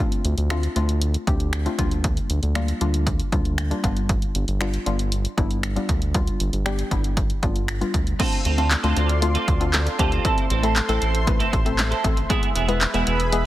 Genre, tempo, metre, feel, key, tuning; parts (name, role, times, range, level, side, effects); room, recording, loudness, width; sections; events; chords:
dance-pop; 117 BPM; 4/4; straight; A4 = 440 Hz
soft round pluck; accompaniment; 0.0-13.5 s; G3 to B4; -27 LUFS; left 3 dB; chorus, sidechain pumping
punchy analog drum machine; drums; 0.1-13.4 s; crash cymbal, finger snaps, handclaps, hi-hat, kick drum, snare drum; -24 LUFS; equal; soft clipping on snare
round analog bass; bass; 0.2-13.5 s; E1 to D2; -23 LUFS; equal; sidechain pumping
lush unison pad; sustained chords; 8.6-13.5 s; G#4 to C6; -28 LUFS; equal; chorus, sidechain pumping
twelve-string electric guitar; riff; 8.2-13.4 s; B3 to A4; -26 LUFS; right 6 dB; ensemble chorus
light reverb; dense, heavily limited modern master; -20 LUFS; side -15 dB against mid
0.0-8.2 A section; 8.2-13.5 B section
0.0 Dm7; 1.8 Bb6/D; 3.8 G7; 8.2 Dm7; 10.2 Am; 12.3 E